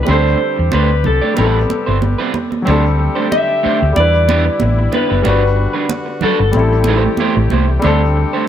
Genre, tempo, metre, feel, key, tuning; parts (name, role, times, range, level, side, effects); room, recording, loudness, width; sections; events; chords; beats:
lush 1970s-style soul; 93 BPM; 4/4; swing 54% on 16ths; A4 = 440 Hz
electric guitar through a small old amp; melody; 0.0-7.5 s; A4 to E5; -18 LUFS; left 2 dB; spring reverb
warm baby grand piano; accompaniment; 0.0-8.5 s; F#3 to B4; -20 LUFS; left 3 dB
warm brass ensemble; sustained chords; 0.0-8.5 s; C3 to B4; -26 LUFS; left 2 dB
electric guitar through a small old amp; riff; 0.1-8.5 s; G3 to D5; -19 LUFS; right 6 dB
hollow-body short-scale fingered electric bass; bass; 0.1-8.2 s; F#1 to E2; -14 LUFS; equal
congas; percussion; 0.1-8.0 s; -22 LUFS; right 5 dB
light reverb, small room ambience; -12 LUFS; side -10 dB against mid
0.0-2.7 A section; 2.7-8.5 B section
0.1 D7sus4; 1.4 Am9; 2.7 D7sus4; 4.0 Em7; 5.2 Gmaj7; 6.5 Am7; 7.8 D7sus4
| 0.08 0.72 1.37 2.02 | 2.66 3.31 3.96 4.60 | 5.25 5.89 6.54 7.18 | 7.83 8.47